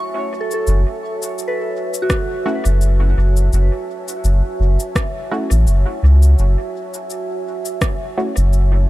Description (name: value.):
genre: ambient dub.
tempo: 84 BPM.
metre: 4/4.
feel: swing 55% on 16ths.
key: F# minor.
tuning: A4 = 441 Hz.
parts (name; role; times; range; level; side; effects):
deep dark ambient pad; sustained chords; 0.0-8.9 s; F#4 to A5; -26 LUFS; right 2 dB; chorus, built-in reverb.
soft synth bell; arpeggios; 0.0-8.9 s; F#4 to C#6; -25 LUFS; left 1 dB; chorus, tape echo.
electronic shaker and rim click; drums; 0.5-8.7 s; none; -27 LUFS; left 1 dB; overdrive, dub echo.
soft dub sub bass; bass; 0.7-8.9 s; F#1 to C#2; -12 LUFS; equal; none.
electronic kick drum; drums; 2.1-8.0 s; none; -20 LUFS; equal; overdrive.
filtered dub chord stab; stabs; 2.5-8.4 s; A3 to F#4; -27 LUFS; right 1 dB; chorus, cassette tape, dub echo.
room: little or no reverb.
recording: none.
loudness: -15 LUFS.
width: side -16 dB against mid.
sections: 0.0-8.9 A section.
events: none.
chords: 0.0 F#m7.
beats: | 0.67 1.39 2.10 2.81 | 3.53 4.24 4.96 5.67 | 6.39 7.10 7.81 8.53.